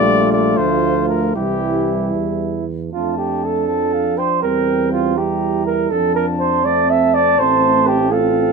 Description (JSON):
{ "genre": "classical, brass quintet", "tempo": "80 BPM (dotted quarters)", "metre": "6/8", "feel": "straight", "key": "F major", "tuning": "A4 = 439 Hz", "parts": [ { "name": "mellow trumpet", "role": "melody", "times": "0.0-8.5 s", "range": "G4 to Bb5", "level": "-22 LUFS", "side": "left 8 dB", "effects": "none" }, { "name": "mellow flugelhorn", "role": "second line", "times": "0.0-8.5 s", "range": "E4 to E5", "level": "-17 LUFS", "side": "right 6 dB", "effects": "none" }, { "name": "mellow French horn", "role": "accompaniment", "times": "0.0-8.5 s", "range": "G3 to F4", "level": "-22 LUFS", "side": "left 3 dB", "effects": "none" }, { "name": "warm trombone", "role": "accompaniment", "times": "0.0-8.5 s", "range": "E3 to C4", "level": "-25 LUFS", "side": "right 3 dB", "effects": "none" }, { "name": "warm tuba", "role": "bass", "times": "0.0-8.5 s", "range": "A1 to F2", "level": "-24 LUFS", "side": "right 4 dB", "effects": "none" } ], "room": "light reverb", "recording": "minimal, uncompressed stereo recording", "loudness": "-15 LUFS", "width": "side -4 dB against mid", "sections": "0.0-2.9 A section; 2.9-8.5 B section", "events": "none", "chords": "0.0 Bb; 1.4 C; 2.9 F; 4.4 C7/E; 5.9 F; 7.4 F/A" }